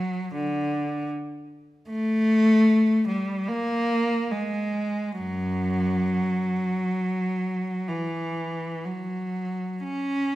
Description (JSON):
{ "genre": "classical, free, expressive piece for unaccompanied cello", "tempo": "free time", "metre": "none", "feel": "none", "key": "unclear", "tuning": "A4 = 440 Hz", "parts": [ { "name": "clear cello", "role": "solo", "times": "0.0-10.4 s", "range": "F#2 to C#4", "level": "-23 LUFS", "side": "equal", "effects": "none" } ], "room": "wet recital hall reverb, RT60 1.4 s", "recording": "minimal, uncompressed stereo recording", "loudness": "-23 LUFS", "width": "side -16 dB against mid", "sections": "0.0-10.4 A section", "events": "none", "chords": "none", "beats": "free time" }